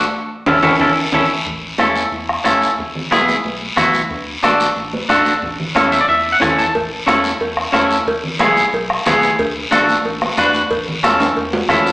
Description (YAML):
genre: latin, cumbia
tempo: 182 BPM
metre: 4/4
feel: straight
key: A major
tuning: A4 = 440 Hz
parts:
  - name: clean electric guitar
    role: accompaniment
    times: 0.0-11.9 s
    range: B3 to A5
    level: -15 LUFS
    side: equal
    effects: none
  - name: round analog bass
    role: bass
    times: 0.0-11.9 s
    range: E1 to E2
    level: -32 LUFS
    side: equal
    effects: none
  - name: bombo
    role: percussion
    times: 0.5-11.9 s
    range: none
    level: -22 LUFS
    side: equal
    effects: none
  - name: congas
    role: percussion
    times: 0.5-11.9 s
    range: none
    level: -25 LUFS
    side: right 1 dB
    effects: none
  - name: guiro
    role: percussion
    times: 0.5-11.9 s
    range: none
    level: -25 LUFS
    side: left 1 dB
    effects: none
  - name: timbales and cowbell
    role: percussion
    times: 0.5-1.2, 6.8-11.9 s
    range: none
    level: -21 LUFS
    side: equal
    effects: none
room: wet large studio reverb, RT60 1.1 s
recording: heard from further back in the room, small speaker sound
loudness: -13 LUFS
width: side -22 dB against mid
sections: 0.0-1.5 A section; 1.5-11.9 B section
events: band accent 0.1-1.5; drum fill 0.5-1.5, 11.2-11.9; clean electric guitar fill 5.8-6.8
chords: 0.1 A; 2.8 E; 4.1 D; 5.4 A; 8.1 E; 9.4 D; 10.7 A